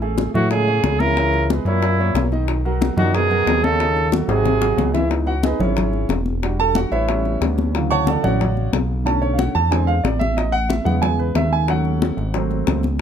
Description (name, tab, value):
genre	Afro-Cuban jazz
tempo	182 BPM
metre	4/4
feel	straight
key	C# minor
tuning	A4 = 445 Hz
part	warm concert grand piano	accompaniment	0.0-12.8 s	C#3 to C#6	-22 LUFS	right 2 dB	none
part	fat analog bass	bass	0.0-13.0 s	E1 to A2	-21 LUFS	equal	none
part	congas	percussion	0.0-13.0 s	none	-25 LUFS	left 2 dB	none
part	bongos	percussion	0.2-13.0 s	none	-26 LUFS	left 8 dB	none
part	mellow trumpet	melody	0.3-4.9 s	E4 to A#4	-20 LUFS	right 4 dB	none
part	clear trombone	second line	0.3-4.9 s	A2 to C#3	-27 LUFS	left 8 dB	none
room	little or no reverb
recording	close, detailed microphones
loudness	-16 LUFS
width	side -8 dB against mid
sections	0.0-5.1 A section; 5.1-13.0 B section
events	drum fill 4.3-5.1; grand piano solo 5.1-13.0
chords	0.0 Amaj7; 1.2 C#m7; 1.8 F#7; 2.5 Bmaj7; 3.8 D#m7b5; 4.5 G#7; 5.1 C#m9; 6.4 Em7; 7.1 A9; 7.7 Dmaj7; 9.1 Bm7; 9.7 Eaug7; 10.4 Amaj9; 11.7 D#m7b5; 12.3 G#7b9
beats	0.18 0.51 0.84 | 1.17 1.49 1.82 2.15 | 2.48 2.81 3.14 3.46 | 3.79 4.12 4.45 4.78 | 5.11 5.44 5.77 6.09 | 6.42 6.75 7.08 7.41 | 7.74 8.07 8.40 8.73 | 9.06 9.38 9.71 10.04 | 10.37 10.70 11.03 11.36 | 11.69 12.02 12.35 12.68 | 13.00